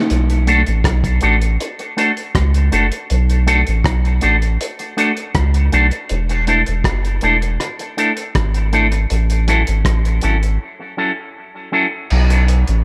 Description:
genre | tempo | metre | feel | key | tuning
dub reggae | 80 BPM | 4/4 | straight | B dorian | A4 = 442 Hz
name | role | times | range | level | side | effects
soft dub sub bass | bass | 0.1-12.8 s | E1 to C#2 | -17 LUFS | equal | none
cloth-damped thuddy drum kit | drums | 0.1-12.8 s | crash cymbal, hi-hat, kick drum, rim click | -24 LUFS | equal | none
electric guitar with an envelope filter | accompaniment | 0.5-11.9 s | F#3 to A4 | -21 LUFS | equal | dub echo
room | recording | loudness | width
light reverb, small room ambience | echo-heavy mix | -16 LUFS | mono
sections
0.1-12.1 A section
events
break 10.6-12.1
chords
0.1 Bm7; 6.1 E7sus4; 9.1 A6; 12.1 B5

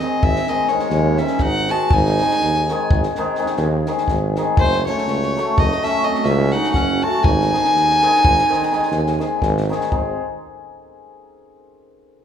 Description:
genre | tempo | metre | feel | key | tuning
balkan folk, Balkan wedding band | 247 BPM (eighths) | 11/8 | straight | G# phrygian dominant | A4 = 440 Hz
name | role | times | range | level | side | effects
warm violin | melody | 0.0-9.4 s | B#4 to A5 | -20 LUFS | equal | none
clear clarinet | second line | 0.0-9.4 s | G#3 to F#4 | -26 LUFS | right 6 dB | none
cimbalom | accompaniment | 0.0-10.2 s | D#3 to A4 | -22 LUFS | left 4 dB | none
warm tuba | bass | 0.0-10.2 s | F#1 to D#2 | -22 LUFS | right 1 dB | none
compact cocktail drum kit | percussion | 0.2-10.2 s | kick drum, snare drum | -23 LUFS | equal | none
room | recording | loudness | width
light reverb | minimal, uncompressed stereo recording | -15 LUFS | side -8 dB against mid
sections
0.0-9.9 A section; 9.9-12.2 B section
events
none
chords
0.0 G#; 4.6 F#m; 7.2 G#

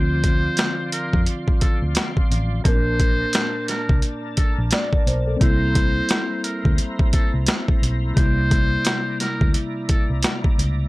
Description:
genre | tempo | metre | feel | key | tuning
hip hop, boom-bap hip-hop | 87 BPM | 4/4 | swing 60% on 16ths | unclear | A4 = 440 Hz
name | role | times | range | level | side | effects
trumpet with metal mute | melody | 0.0-10.1 s | A4 to C5 | -27 LUFS | equal | high-pass filter, low-pass filter, analog delay
mellow tine electric piano | accompaniment | 0.0-10.9 s | Bb2 to D5 | -26 LUFS | left 1 dB | slow stereo tremolo, cassette tape, high-pass filter, low-pass filter
overdriven tonewheel organ | sustained chords | 0.0-10.9 s | D4 to C6 | -34 LUFS | equal | chorus vibrato, slow rotary speaker, high-pass filter, low-pass filter
fingered electric bass | bass | 0.0-10.9 s | A1 to F2 | -22 LUFS | equal | none
boom bap sampler-style drum kit | drums | 0.2-10.8 s | hi-hat, kick drum, snare drum | -19 LUFS | equal | overdrive
room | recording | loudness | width
digital ambience | dry, gritty hardware recording, transformer saturation | -18 LUFS | side -20 dB against mid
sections
0.0-5.4 A section; 5.4-10.9 B section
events
none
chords
0.0 Dm7; 2.7 Bbmaj7; 5.4 C7

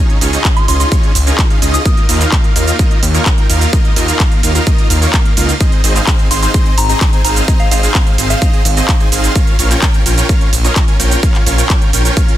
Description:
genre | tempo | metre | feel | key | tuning
EDM, festival progressive house | 128 BPM | 4/4 | straight | Ab major | A4 = 440 Hz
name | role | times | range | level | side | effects
supersaw chords | riff | 0.0-12.4 s | Bb3 to Ab5 | -17 LUFS | right 1 dB | sidechain pumping, ping-pong delay
big-room dance drum kit | drums | 0.1-12.4 s | cabasa, handclaps, hi-hat, ride cymbal | -18 LUFS | right 2 dB | studio reverb
wide detuned saw bass | bass | 0.2-12.1 s | Ab1 to Eb2 | -14 LUFS | equal | chorus, sidechain pumping
electronic kick drum | drums | 0.4-12.3 s | none | -12 LUFS | equal | studio reverb
soft synth bell | melody | 0.6-1.9, 6.3-9.0 s | F5 to Eb6 | -21 LUFS | left 1 dB | chorus, phaser, ping-pong delay
room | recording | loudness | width
little or no reverb | dense, heavily limited modern master | -9 LUFS | side -13 dB against mid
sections
0.0-12.4 A section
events
none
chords
0.0 Dbadd9; 1.9 Ebsus2; 5.6 Ab; 9.4 Bbm

